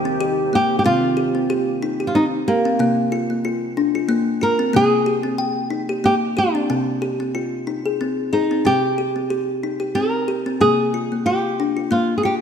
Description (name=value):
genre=world meditative, meditative tuned percussion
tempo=92 BPM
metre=3/4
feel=swing 55% on 16ths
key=C minor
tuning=A4 = 439 Hz
part: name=flamenco guitar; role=melody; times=0.0-12.3 s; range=Bb3 to Bb4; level=-20 LUFS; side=right 1 dB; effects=none
part: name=deep dark ambient pad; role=sustained chords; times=0.0-0.8 s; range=Eb3 to G4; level=-26 LUFS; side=right 2 dB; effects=chorus, built-in reverb
part: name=kalimba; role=arpeggios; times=0.0-12.4 s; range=C3 to G5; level=-21 LUFS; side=left 2 dB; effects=none
room=moderate lush hall reverb, RT60 1.9 s, small room ambience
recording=none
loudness=-17 LUFS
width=side -7 dB against mid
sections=0.8-12.4 A section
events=none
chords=0.0 Eb; 0.8 C5; 2.8 Bb5/C; 4.7 Eb/C (rootless); 6.7 Ab/C; 8.7 C5; 10.6 Bb5/C